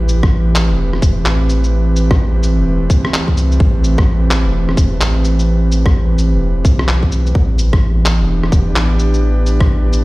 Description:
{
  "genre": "future garage",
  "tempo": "128 BPM",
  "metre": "4/4",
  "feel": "swing 62% on 16ths",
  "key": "A minor",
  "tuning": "A4 = 445 Hz",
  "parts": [
    { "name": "airy breathy pad", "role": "sustained chords", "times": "0.0-10.0 s", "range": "E3 to B4", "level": "-19 LUFS", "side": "right 1 dB", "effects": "chorus, sidechain pumping" },
    { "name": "warm sub bass", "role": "bass", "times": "0.0-10.0 s", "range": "E1 to C2", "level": "-14 LUFS", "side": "equal", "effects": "sidechain pumping" },
    { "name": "electronic shaker, rim click and handclaps", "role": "drums", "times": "0.1-10.0 s", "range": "none", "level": "-21 LUFS", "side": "equal", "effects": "none" },
    { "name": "electronic kick drum", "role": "drums", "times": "0.2-9.7 s", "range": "none", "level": "-12 LUFS", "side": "equal", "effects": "overdrive" }
  ],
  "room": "light reverb",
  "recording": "played on a big sound system in a bare room, stone room reverb",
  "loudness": "-11 LUFS",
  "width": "side -20 dB against mid",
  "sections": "0.0-10.0 A section",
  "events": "none",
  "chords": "0.0 Am9; 7.4 G6"
}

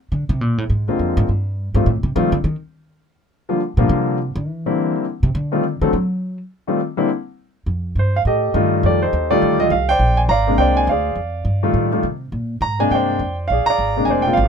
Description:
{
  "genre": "jazz piano trio",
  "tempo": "206 BPM",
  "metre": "4/4",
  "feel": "swing 61% on 8ths",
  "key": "F mixolydian",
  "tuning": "A4 = 439 Hz",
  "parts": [
    { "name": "upright bass", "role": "bass", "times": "0.1-14.5 s", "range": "F1 to Gb3", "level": "-20 LUFS", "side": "right 1 dB", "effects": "none" },
    { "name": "warm concert grand piano", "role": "melody", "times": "0.9-14.5 s", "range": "C3 to Bb5", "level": "-17 LUFS", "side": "left 1 dB", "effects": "none" }
  ],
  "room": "little or no reverb",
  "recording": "minimal, uncompressed stereo recording",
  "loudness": "-16 LUFS",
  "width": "side -6 dB against mid",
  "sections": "0.0-7.7 A section; 7.7-14.5 B section",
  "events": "upright bass solo 0.0-7.7",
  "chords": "0.0 Bb9; 1.9 F7; 3.0 Gm7; 4.2 C9; 5.4 F7 (rootless); 5.9 N.C.; 6.5 Fsus2 (rootless); 7.1 N.C.; 7.7 F9; 10.0 Bb9; 11.2 F9; 12.3 Bb9"
}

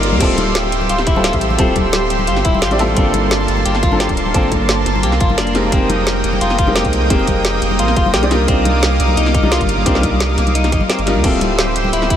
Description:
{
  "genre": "liquid drum and bass",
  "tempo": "174 BPM",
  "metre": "4/4",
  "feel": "straight",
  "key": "D phrygian",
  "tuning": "A4 = 439 Hz",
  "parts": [
    { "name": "clear grand piano", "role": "accompaniment", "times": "0.0-12.2 s", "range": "G3 to D5", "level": "-20 LUFS", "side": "left 1 dB", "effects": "analog delay" },
    { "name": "lush unison pad", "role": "sustained chords", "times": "0.0-12.2 s", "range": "Bb3 to E6", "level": "-20 LUFS", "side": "right 1 dB", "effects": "chorus, sidechain pumping" },
    { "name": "warm sub bass", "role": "bass", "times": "0.0-12.2 s", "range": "D1 to Eb2", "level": "-19 LUFS", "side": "equal", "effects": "none" },
    { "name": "drum and bass drum kit", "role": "drums", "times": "0.0-12.2 s", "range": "crash cymbal, hi-hat, snare drum", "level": "-21 LUFS", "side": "equal", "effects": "none" },
    { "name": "congas and bongos", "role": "percussion", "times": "0.1-11.9 s", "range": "none", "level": "-25 LUFS", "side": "left 3 dB", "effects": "none" },
    { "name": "clean electric guitar", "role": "arpeggios", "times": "0.2-12.2 s", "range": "C4 to G4", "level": "-22 LUFS", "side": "left 3 dB", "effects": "analog delay" },
    { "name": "electronic kick drum", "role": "drums", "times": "0.2-12.2 s", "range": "none", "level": "-18 LUFS", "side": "right 1 dB", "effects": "none" }
  ],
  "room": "moderate huge ambient reverb, RT60 7.5 s",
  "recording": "dreamy mix soaked in reverb",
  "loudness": "-12 LUFS",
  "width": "side -10 dB against mid",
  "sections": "0.2-12.2 A section",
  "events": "drop 0.2-12.2",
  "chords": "0.2 Dm11; 3.0 Gm11; 5.6 Fm11; 8.3 Cm11; 11.2 Dm11"
}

